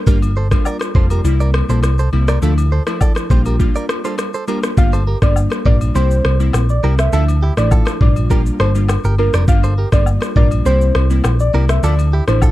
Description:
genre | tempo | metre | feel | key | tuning
afrobeats | 102 BPM | 4/4 | straight | G dorian | A4 = 441 Hz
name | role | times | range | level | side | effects
glassy digital keys | accompaniment | 0.1-12.5 s | F3 to F4 | -22 LUFS | left 2 dB | chorus
direct-recorded clean electric guitar | riff | 0.1-12.5 s | E4 to D5 | -25 LUFS | right 4 dB | tape echo
hollow-body short-scale picked electric bass | bass | 0.1-12.5 s | F1 to D2 | -15 LUFS | equal | none
afro-pop drum kit | drums | 0.1-12.5 s | kick drum, rim click, shaker, toms | -16 LUFS | equal | none
agogo bells and woodblock | percussion | 0.2-12.5 s | none | -31 LUFS | left 8 dB | none
soft struck synth lead | melody | 4.8-12.4 s | Bb4 to F5 | -22 LUFS | equal | chorus, tape echo
room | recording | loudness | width
little or no reverb | dark, warm production | -12 LUFS | side -16 dB against mid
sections
0.0-4.8 A section; 4.8-12.5 B section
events
none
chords
0.1 Gm7; 1.2 C7; 2.4 Dmadd9; 3.3 Bb6; 4.8 Gm7; 6.0 C7; 7.1 Dmadd9; 8.0 Bb6; 9.5 Gm7; 10.7 C7; 11.8 Dmadd9

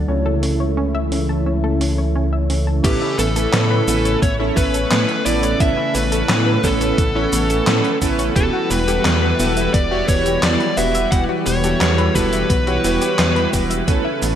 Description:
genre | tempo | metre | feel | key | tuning
synthwave | 87 BPM | 4/4 | straight | unclear | A4 = 442 Hz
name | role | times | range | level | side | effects
lush unison pad | sustained chords | 0.0-14.4 s | C#3 to F#5 | -24 LUFS | left 1 dB | chorus
analog pluck | arpeggios | 0.0-14.3 s | B3 to A5 | -26 LUFS | left 1 dB | chorus, digital delay
chorused polysynth | stabs | 0.0-14.4 s | B3 to C#5 | -23 LUFS | right 3 dB | none
dark detuned saw bass | bass | 0.0-14.4 s | E1 to A2 | -21 LUFS | equal | tube saturation, sidechain pumping
gated 80s digital drum machine | drums | 0.4-14.4 s | cabasa, crash cymbal, handclaps, hi-hat, snare drum | -24 LUFS | equal | gated reverb, gated reverb snare
fuzz lead guitar | melody | 2.8-13.5 s | G4 to F#5 | -22 LUFS | equal | distortion, digital delay
electronic kick drum | drums | 2.8-14.0 s | none | -19 LUFS | equal | none
room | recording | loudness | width
light reverb, digital ambience | bright 1980s-style digital production | -15 LUFS | side -9 dB against mid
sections
0.0-2.8 A section; 2.8-14.4 B section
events
none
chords
0.1 A/C#; 2.8 Aadd9; 8.4 Emadd9

